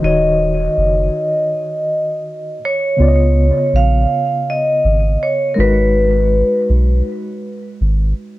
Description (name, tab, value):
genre	hip hop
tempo	81 BPM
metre	4/4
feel	swing 58% on 16ths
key	unclear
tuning	A4 = 440 Hz
part	vibraphone with medium hard mallets	melody	0.0-6.7 s	Bb4 to F5	-16 LUFS	equal	low-pass filter, tape echo
part	mellow reed electric piano	accompaniment	0.0-8.4 s	Db3 to Eb5	-20 LUFS	left 1 dB	fast tremolo, cassette tape, low-pass filter, tape echo
part	soft dub sub bass	bass	0.0-8.1 s	Eb1 to Db2	-14 LUFS	equal	none
room	light reverb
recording	echo-heavy mix, cassette tape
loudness	-13 LUFS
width	side -17 dB against mid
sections	0.0-3.0 A section; 3.0-8.4 B section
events	stop 1.5-3.0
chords	0.0 Ebm7; 3.0 Db9; 5.6 Abm7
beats	| 0.03 0.77 1.51 2.25 | 2.99 3.73 4.47 5.21 | 5.95 6.69 7.43 8.17